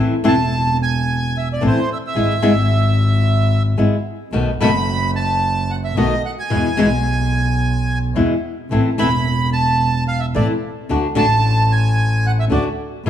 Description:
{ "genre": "tango", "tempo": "110 BPM", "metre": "4/4", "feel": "rubato", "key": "A harmonic minor", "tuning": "A4 = 441 Hz", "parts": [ { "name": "flamenco guitar", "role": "accompaniment", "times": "0.0-13.1 s", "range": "B2 to F#4", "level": "-19 LUFS", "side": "left 2 dB", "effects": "none" }, { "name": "clear double bass", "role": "bass", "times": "0.0-13.1 s", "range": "E1 to E2", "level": "-18 LUFS", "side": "equal", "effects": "none" }, { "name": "bandoneon", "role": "melody", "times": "0.3-12.6 s", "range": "C5 to B5", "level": "-21 LUFS", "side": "right 2 dB", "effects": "none" } ], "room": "light reverb", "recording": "none", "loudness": "-15 LUFS", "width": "side -10 dB against mid", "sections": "0.0-13.1 A section", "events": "none", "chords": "0.0 Am; 2.2 E/G#; 4.3 B7; 6.5 E; 8.7 Am; 10.9 D" }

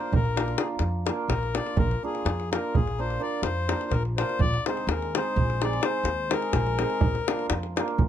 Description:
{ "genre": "balkan folk, Balkan wedding band", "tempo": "252 BPM (eighths)", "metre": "11/8", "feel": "straight", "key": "Bb mixolydian", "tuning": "A4 = 439 Hz", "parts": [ { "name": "accordion", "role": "second line", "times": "0.0-7.5 s", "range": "Ab4 to D5", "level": "-30 LUFS", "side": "left 5 dB", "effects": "none" }, { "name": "hammered dulcimer", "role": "accompaniment", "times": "0.0-8.0 s", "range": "Ab3 to Bb4", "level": "-32 LUFS", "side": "right 5 dB", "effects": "none" }, { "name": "upright bass", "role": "bass", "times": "0.1-8.1 s", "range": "Bb1 to F2", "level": "-29 LUFS", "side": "equal", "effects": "none" }, { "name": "davul", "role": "percussion", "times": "0.1-8.1 s", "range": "none", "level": "-26 LUFS", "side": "equal", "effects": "none" } ], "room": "little or no reverb", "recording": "close, detailed microphones", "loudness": "-24 LUFS", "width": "side -10 dB against mid", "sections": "0.0-8.1 A section", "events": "accordion solo 0.0-8.1", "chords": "0.0 Bb; 4.4 Ab/Bb; 7.0 Bb" }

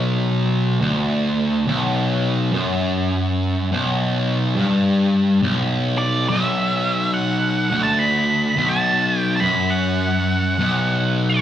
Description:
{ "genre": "metal", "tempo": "70 BPM", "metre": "4/4", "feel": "swing 64% on 8ths", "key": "B minor", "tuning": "A4 = 440 Hz", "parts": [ { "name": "fuzz guitar", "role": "riff", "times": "0.0-11.4 s", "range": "B1 to G2", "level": "-18 LUFS", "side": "equal", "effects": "distortion" }, { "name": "octave-fuzz lead guitar", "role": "melody", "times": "6.0-11.4 s", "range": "D5 to B5", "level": "-21 LUFS", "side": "right 2 dB", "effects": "distortion" } ], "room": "light reverb", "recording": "live gig heard through the venue's PA, club reverb", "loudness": "-17 LUFS", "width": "side -10 dB against mid", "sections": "0.0-11.4 A section", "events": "none", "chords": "0.0 Bm" }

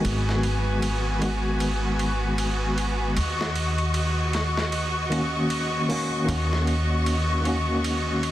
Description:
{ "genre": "trip hop", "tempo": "77 BPM", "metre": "4/4", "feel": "swing 59% on 16ths", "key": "G# minor", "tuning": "A4 = 441 Hz", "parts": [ { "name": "tine electric piano", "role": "accompaniment", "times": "0.0-8.3 s", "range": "D#3 to F#4", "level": "-27 LUFS", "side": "equal", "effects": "medium tremolo, tape echo" }, { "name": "clear symphonic string section", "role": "sustained chords", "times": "0.0-8.3 s", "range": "F#4 to C#6", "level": "-28 LUFS", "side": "left 1 dB", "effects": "vintage 12-bit sampler grit" }, { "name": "upright bass", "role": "bass", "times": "0.0-8.3 s", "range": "G#1 to D#2", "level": "-26 LUFS", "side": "equal", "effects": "none" }, { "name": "dusty soul sampler-style drum kit", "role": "drums", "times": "0.0-8.3 s", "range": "hi-hat, ride cymbal, snare drum", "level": "-31 LUFS", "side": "right 3 dB", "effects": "overdrive, high-pass filter on cymbals, small room ambience, high-pass filter on snare, high-pass filter on hats" } ], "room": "light reverb, small room ambience", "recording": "dense, heavily limited modern master, vinyl crackle", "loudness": "-22 LUFS", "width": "side -13 dB against mid", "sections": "0.0-8.3 A section", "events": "none", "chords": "0.0 G#m7; 3.2 D#m7" }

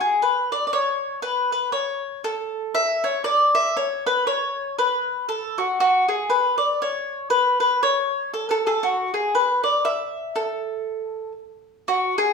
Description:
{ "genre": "celtic folk", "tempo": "119 BPM", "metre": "3/4", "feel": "swing 58% on 8ths", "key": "A major", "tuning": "A4 = 440 Hz", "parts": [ { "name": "mandolin", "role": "solo", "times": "0.0-12.3 s", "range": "F#4 to E5", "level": "-20 LUFS", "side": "left 1 dB", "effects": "none" } ], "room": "moderate stone room reverb, RT60 0.9 s", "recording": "band playing live in one room, studio reverb", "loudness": "-20 LUFS", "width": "side -5 dB against mid", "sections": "0.0-11.9 A section", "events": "none", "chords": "none" }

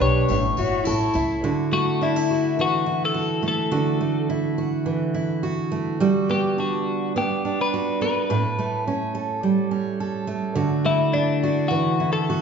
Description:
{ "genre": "acoustic pop", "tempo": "105 BPM", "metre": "4/4", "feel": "swing 55% on 16ths", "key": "D major", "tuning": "A4 = 438 Hz", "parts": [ { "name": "twelve-string electric guitar", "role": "melody", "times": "0.0-12.4 s", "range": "D4 to C#5", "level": "-24 LUFS", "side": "left 5 dB", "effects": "spring reverb" }, { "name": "picked steel-string acoustic guitar", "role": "accompaniment", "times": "0.0-12.4 s", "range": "A2 to A4", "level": "-22 LUFS", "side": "right 3 dB", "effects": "none" }, { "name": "upright bass", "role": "bass", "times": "0.0-1.4 s", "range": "G1 to C#2", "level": "-25 LUFS", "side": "left 1 dB", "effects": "none" }, { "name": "tambourine", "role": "percussion", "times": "0.3-1.3 s", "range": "none", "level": "-40 LUFS", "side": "left 5 dB", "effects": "none" }, { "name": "dark cello", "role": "second line", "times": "0.6-1.4 s", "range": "E4 to F#4", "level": "-26 LUFS", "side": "left 4 dB", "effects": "none" } ], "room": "wet large studio reverb, RT60 1.3 s", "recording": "band playing live in one room, nothing above 7.6 kHz", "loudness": "-20 LUFS", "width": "side -6 dB against mid", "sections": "0.0-1.4 A section; 1.4-12.4 B section", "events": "none", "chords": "0.3 A; 1.4 Dadd9; 6.0 Gmaj7; 8.3 A7; 10.6 Dadd9" }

